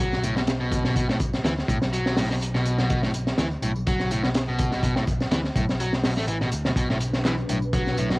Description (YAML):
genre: breakbeat, breaks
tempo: 124 BPM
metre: 4/4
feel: swing 54% on 16ths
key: B minor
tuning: A4 = 441 Hz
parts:
  - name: overdriven electric guitar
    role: riff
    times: 0.0-8.2 s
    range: A2 to A3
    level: -27 LUFS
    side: equal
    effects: tape echo
  - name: picked electric bass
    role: bass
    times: 0.0-8.2 s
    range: A1 to D2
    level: -28 LUFS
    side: equal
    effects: none
  - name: crunchy breakbeat drum kit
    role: drums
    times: 0.0-8.2 s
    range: hi-hat, kick drum, snare drum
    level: -25 LUFS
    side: equal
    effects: cassette tape
  - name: electronic tambourine and handclaps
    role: drums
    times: 0.1-8.2 s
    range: none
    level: -42 LUFS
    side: equal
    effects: none
  - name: congas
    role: percussion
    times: 0.2-8.2 s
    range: none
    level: -36 LUFS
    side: left 2 dB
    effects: none
  - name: warbly tape-like pad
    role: sustained chords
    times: 7.1-8.2 s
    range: F#3 to B4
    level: -31 LUFS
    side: equal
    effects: chorus, built-in reverb, sidechain pumping
room: light reverb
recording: home recording on cassette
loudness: -22 LUFS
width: side -24 dB against mid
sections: 0.0-8.2 A section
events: none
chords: 0.0 Bm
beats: 0.48 | 0.96 1.45 1.93 2.41 | 2.90 3.38 3.86 4.35 | 4.83 5.32 5.80 6.28 | 6.77 7.25 7.74